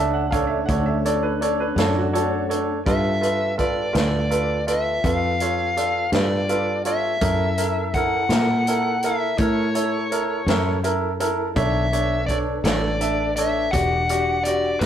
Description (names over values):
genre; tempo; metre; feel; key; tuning
slow blues; 55 BPM (dotted quarters); 12/8; straight; B minor; A4 = 440 Hz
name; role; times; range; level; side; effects
bright upright piano; second line; 0.0-2.7 s; F#4 to A5; -27 LUFS; equal; none
bright upright piano; accompaniment; 0.0-14.9 s; D4 to E5; -24 LUFS; right 3 dB; none
mellow tonewheel organ; sustained chords; 0.0-14.9 s; D#3 to A#4; -32 LUFS; left 2 dB; slow rotary speaker
fingered electric bass; bass; 0.0-14.9 s; E1 to A#2; -25 LUFS; equal; none
vintage drum kit; drums; 0.3-14.9 s; hi-hat, kick drum, snare drum; -27 LUFS; equal; none
dark smooth lead guitar; melody; 2.9-14.9 s; B4 to F#5; -24 LUFS; left 2 dB; overdrive
room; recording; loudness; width
moderate stone room reverb, RT60 1.1 s; rough rehearsal-room recording; -19 LUFS; side -9 dB against mid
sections
0.0-14.9 A section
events
none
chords
0.0 Bm9 (rootless); 2.9 G7; 7.2 F#7#9; 11.6 Bm9; 13.7 Em9